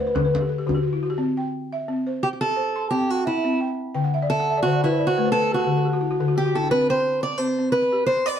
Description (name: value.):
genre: west african traditional, West African string and xylophone music.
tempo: 87 BPM.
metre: 4/4.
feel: swing 55% on 16ths.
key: C lydian.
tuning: A4 = 437 Hz.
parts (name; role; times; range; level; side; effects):
fingerpicked acoustic archtop guitar; melody; 0.0-8.4 s; E4 to D5; -22 LUFS; right 2 dB; slapback echo.
balafon; arpeggios; 0.0-8.4 s; D3 to C6; -23 LUFS; left 2 dB; none.
djembe; percussion; 0.0-0.8 s; none; -29 LUFS; right 4 dB; none.
room: moderate booth ambience, RT60 0.2 s.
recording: dark, warm production.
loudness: -20 LUFS.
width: side -9 dB against mid.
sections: 0.0-1.2 A section; 1.2-8.4 B section.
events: balafon fill 0.0-1.2, 3.9-6.7; steel-string acoustic guitar solo 1.2-8.4.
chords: 0.0 D; 1.2 C; 3.9 D5; 6.7 C5.